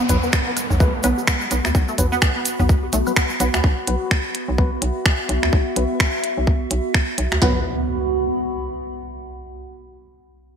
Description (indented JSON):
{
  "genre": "minimal techno",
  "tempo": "127 BPM",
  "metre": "4/4",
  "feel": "swing 59% on 16ths",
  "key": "unclear",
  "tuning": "A4 = 441 Hz",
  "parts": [
    { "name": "resonant blip pluck", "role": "riff", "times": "0.0-3.5, 7.4-7.6 s", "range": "A3 to B3", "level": "-25 LUFS", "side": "right 1 dB", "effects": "wide subtle chorus, sidechain pumping, digital delay" },
    { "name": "downlifter and impact", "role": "sound effects", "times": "0.0-3.6, 7.5-9.3 s", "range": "none", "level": "-29 LUFS", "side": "right 1 dB", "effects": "none" },
    { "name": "warbly tape-like pad", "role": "texture", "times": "1.0-9.3 s", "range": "B3 to B5", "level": "-26 LUFS", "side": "right 1 dB", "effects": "chorus, built-in reverb, phaser, sidechain pumping" },
    { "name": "percussive organ stab", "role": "stabs", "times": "0.1-7.6 s", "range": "F#3 to B4", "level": "-28 LUFS", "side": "left 2 dB", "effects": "chorus, cassette tape, ping-pong delay" },
    { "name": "hollow knocking FM bass", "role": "bass", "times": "0.1-7.6 s", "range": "B1 to D2", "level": "-23 LUFS", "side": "equal", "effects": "sidechain pumping" },
    { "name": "minimal click drum kit", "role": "drums", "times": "0.1-7.4 s", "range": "finger snaps, hi-hat", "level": "-22 LUFS", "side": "equal", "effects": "overdrive, gated reverb" },
    { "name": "cabasa", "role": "percussion", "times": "0.1-3.6 s", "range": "none", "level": "-31 LUFS", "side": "right 3 dB", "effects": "none" },
    { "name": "electronic toms, bongos and woodblock", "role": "percussion", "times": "0.1-3.1 s", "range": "none", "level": "-24 LUFS", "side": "equal", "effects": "gated reverb" },
    { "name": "minimal click drum kit", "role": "drums", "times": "0.3-7.5 s", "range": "kick drum, snare drum", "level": "-18 LUFS", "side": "equal", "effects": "overdrive" }
  ],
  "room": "moderate lush hall reverb, RT60 2.0 s",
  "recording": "bright 1980s-style digital production",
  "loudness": "-17 LUFS",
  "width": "side -7 dB against mid",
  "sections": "0.0-7.4 A section; 7.4-9.3 B section",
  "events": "filter sweep on FM bass 0.0-7.4; filter sweep on synth stab 0.0-7.4",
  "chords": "0.0 B5"
}